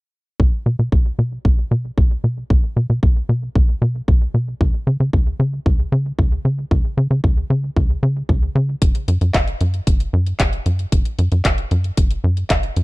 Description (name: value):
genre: italo disco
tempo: 114 BPM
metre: 4/4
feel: straight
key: unclear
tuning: A4 = 440 Hz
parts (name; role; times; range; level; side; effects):
- tight sequencer bass; bass; 0.4-12.8 s; F#1 to C#3; -18 LUFS; equal; none
- electronic kick drum; drums; 0.4-12.6 s; none; -16 LUFS; equal; studio ambience
- house drum kit; drums; 8.8-12.8 s; handclaps, hi-hat; -23 LUFS; left 1 dB; studio ambience
room: digital ambience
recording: dry, close 1970s-style studio recording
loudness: -16 LUFS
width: side -22 dB against mid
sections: 0.4-12.8 A section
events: none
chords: none